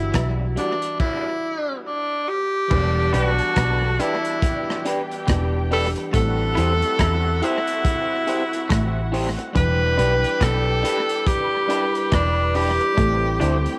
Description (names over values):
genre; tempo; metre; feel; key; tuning
lovers rock reggae; 70 BPM; 4/4; swing 60% on 16ths; E minor; A4 = 440 Hz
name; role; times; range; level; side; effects
bright tenor saxophone; melody; 0.0-13.6 s; D4 to B4; -25 LUFS; equal; tape echo
barky tine electric piano; accompaniment; 0.0-13.8 s; E3 to B4; -33 LUFS; equal; tape echo
vintage muted fingered electric bass; bass; 0.0-13.7 s; E1 to E2; -25 LUFS; equal; none
twangy electric guitar; riff; 0.1-13.6 s; E3 to E4; -34 LUFS; equal; none
crunchy breakbeat drum kit; drums; 0.1-13.8 s; crash cymbal, hi-hat, kick drum, rim click; -28 LUFS; equal; tape echo
electric guitar through a small old amp; stabs; 0.4-13.6 s; G3 to C5; -32 LUFS; equal; tape echo
edgy saxophone section; second line; 2.7-13.8 s; B2 to G4; -39 LUFS; equal; none
muted studio string section; second line; 2.7-13.8 s; F#4 to B5; -36 LUFS; equal; none
room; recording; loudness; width
light reverb, small room ambience; none; -21 LUFS; mono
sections
0.0-2.7 A section; 2.7-13.8 B section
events
none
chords
0.0 Em9; 2.7 Em7; 6.1 Am7; 9.6 Em7; 13.0 Am7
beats
0.15 1.00 1.86 | 2.71 3.57 4.43 5.28 | 6.14 6.99 7.85 8.70 | 9.56 10.41 11.27 12.12 | 12.98